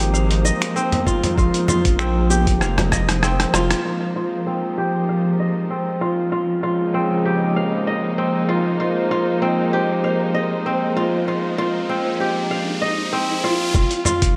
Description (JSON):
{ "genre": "organic downtempo", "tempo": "97 BPM", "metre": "4/4", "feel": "swing 54% on 16ths", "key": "F minor", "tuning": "A4 = 440 Hz", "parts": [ { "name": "muted studio string section", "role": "sustained chords", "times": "0.0-13.8 s", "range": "Db2 to C5", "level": "-24 LUFS", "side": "equal", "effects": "sidechain pumping" }, { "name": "kora", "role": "arpeggios", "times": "0.0-14.4 s", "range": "C4 to F5", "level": "-24 LUFS", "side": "equal", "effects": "low-pass filter, tape echo" }, { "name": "round analog bass", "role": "bass", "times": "0.0-3.7, 13.7-14.4 s", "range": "F1 to Bb1", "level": "-22 LUFS", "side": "equal", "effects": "sidechain pumping" }, { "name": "dusty soul sampler-style drum kit", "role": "drums", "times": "0.0-3.8, 13.7-14.3 s", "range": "cabasa, finger snaps, hi-hat, rim click, toms", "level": "-25 LUFS", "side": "equal", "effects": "low-pass filter on hats, low-pass filter on toms, low-pass filter on perc, low-pass filter on snare, low-pass filter on room" }, { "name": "congas and bongos", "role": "percussion", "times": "0.4-3.7 s", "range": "none", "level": "-32 LUFS", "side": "equal", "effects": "none" }, { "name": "electronic kick drum", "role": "drums", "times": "1.1-3.1, 13.7-14.3 s", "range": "none", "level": "-22 LUFS", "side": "equal", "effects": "none" }, { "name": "riser", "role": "sound effects", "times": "11.0-13.7 s", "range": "none", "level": "-30 LUFS", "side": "equal", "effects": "none" } ], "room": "moderate echo chamber reverb, RT60 2.2 s", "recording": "none", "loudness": "-20 LUFS", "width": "mono", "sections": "0.0-3.8 A section; 3.8-13.7 B section", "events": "drum fill 2.6-3.8; kick drops out 3.2-3.8; band accent 3.7-4.0; filter sweep on kora 3.8-13.7; riser 11.0-13.7", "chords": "0.0 Abmaj7; 1.4 Fm9; 6.3 Dbmaj9#11; 8.8 Abmaj7; 13.7 F5", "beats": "0.14 0.76 | 1.38 1.99 2.61 3.23 | 3.85 4.47 5.09 5.71 | 6.32 6.94 7.56 8.18 | 8.80 9.42 10.04 10.65 | 11.27 11.89 12.51 13.13 | 13.75" }